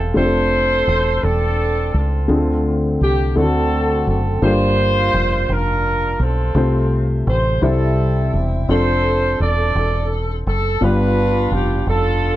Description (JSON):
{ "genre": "slow gospel", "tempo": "56 BPM (dotted quarters)", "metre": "6/8", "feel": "straight", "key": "F major", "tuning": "A4 = 440 Hz", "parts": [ { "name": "mellow horn section", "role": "melody", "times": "0.0-12.4 s", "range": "C4 to D5", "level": "-20 LUFS", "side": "right 1 dB", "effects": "none" }, { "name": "dark upright piano", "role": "accompaniment", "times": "0.0-12.4 s", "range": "G2 to C6", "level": "-21 LUFS", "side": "left 2 dB", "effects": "none" }, { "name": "deep dub fingered electric bass", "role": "bass", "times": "0.0-12.4 s", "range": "E1 to D2", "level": "-19 LUFS", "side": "equal", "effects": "none" } ], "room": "little or no reverb", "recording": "dry, close 1970s-style studio recording", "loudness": "-15 LUFS", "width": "side -14 dB against mid", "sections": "0.1-12.4 A section", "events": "none", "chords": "0.1 F6; 2.3 Dm7; 3.4 D7; 4.4 Gm7; 6.6 F/C; 7.6 C; 8.7 F6; 10.8 G7", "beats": "| 0.15 1.22 | 2.29 3.36 | 4.43 5.49 | 6.56 7.62 | 8.69 9.75 | 10.81 11.88" }